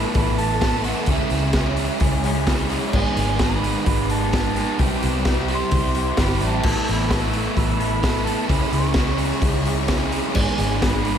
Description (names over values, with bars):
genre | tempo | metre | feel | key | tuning
rock, shoegaze and dream pop | 129 BPM | 4/4 | straight | unclear | A4 = 438 Hz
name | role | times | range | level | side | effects
mellow hollow silver concert flute | melody | 0.0-11.2 s | E5 to C#6 | -29 LUFS | right 5 dB | analog delay
phased string machine | sustained chords | 0.0-11.2 s | G#3 to E6 | -32 LUFS | left 1 dB | ensemble chorus, phaser
crunchy overdriven guitar | riff | 0.0-11.2 s | C3 to A4 | -26 LUFS | left 14 dB | wide subtle chorus
overdriven semi-hollow guitar | riff | 0.0-11.2 s | G#2 to A4 | -25 LUFS | right 10 dB | reverse reverb
vintage muted fingered electric bass | bass | 0.0-11.2 s | G1 to C#2 | -24 LUFS | left 1 dB | none
raw garage drum kit | drums | 0.1-11.2 s | crash cymbal, hi-hat, kick drum, snare drum | -23 LUFS | left 1 dB | none
room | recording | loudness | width
light reverb, studio ambience | none | -18 LUFS | side -8 dB against mid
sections
0.0-11.2 A section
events
none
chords
0.0 Asus2; 1.1 C#m7; 2.9 G#m7; 4.8 C; 6.6 Asus2; 8.5 C#m7; 10.4 G#m7